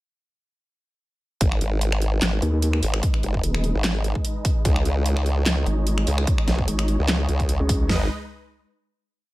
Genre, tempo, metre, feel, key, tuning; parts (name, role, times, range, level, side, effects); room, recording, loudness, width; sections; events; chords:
heavy wobble dubstep; 148 BPM; 4/4; swing 54% on 16ths, half-time; G# minor; A4 = 441 Hz
supersaw chords; sustained chords; 1.4-8.1 s; G#3 to D#5; -32 LUFS; right 1 dB; sidechain pumping, low-pass filter
formant-sweep wobble bass; bass; 1.4-8.1 s; F#1 to C#2; -22 LUFS; equal; chorus, overdrive
dubstep drum kit; drums; 1.4-8.0 s; kick drum, snare drum, toms; -23 LUFS; equal; studio reverb
dubstep drum kit; drums; 1.4-7.8 s; finger snaps, handclaps, hi-hat, snare drum; -26 LUFS; equal; studio reverb
vowel-sweep wobble bass; bass; 2.4-7.9 s; D#1 to D#2; -21 LUFS; equal; chorus, overdrive
little or no reverb; -20 LUFS; side -18 dB against mid
1.4-7.9 drop; 7.9-9.3 final chord
drop 1.4-7.9
1.4 G#m; 4.7 C#sus2; 7.9 G#m